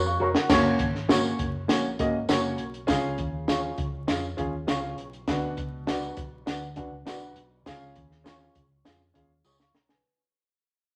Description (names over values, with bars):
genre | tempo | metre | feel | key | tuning
uptempo 1960s-style soul | 101 BPM | 4/4 | straight | F# major | A4 = 440 Hz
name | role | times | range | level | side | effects
vintage muted fingered electric bass | bass | 0.0-10.0 s | E#1 to E#2 | -38 LUFS | equal | none
dark upright piano | accompaniment | 0.1-10.2 s | B2 to D#6 | -30 LUFS | equal | none
electric guitar through a small old amp | stabs | 0.2-9.6 s | E#4 to D5 | -34 LUFS | equal | spring reverb
compact cocktail drum kit | drums | 0.3-10.0 s | crash cymbal, hi-hat, kick drum, snare drum | -30 LUFS | equal | none
tambourine | percussion | 0.5-9.6 s | none | -43 LUFS | equal | none
room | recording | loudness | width
wet studio reverb, RT60 1.0 s | vinyl crackle | -27 LUFS | mono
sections
0.5-10.0 A section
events
drum fill 0.0-0.5, 9.4-10.0; fade-out 0.5-10.0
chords
0.5 F#; 2.9 C#; 5.3 Bm; 7.7 C#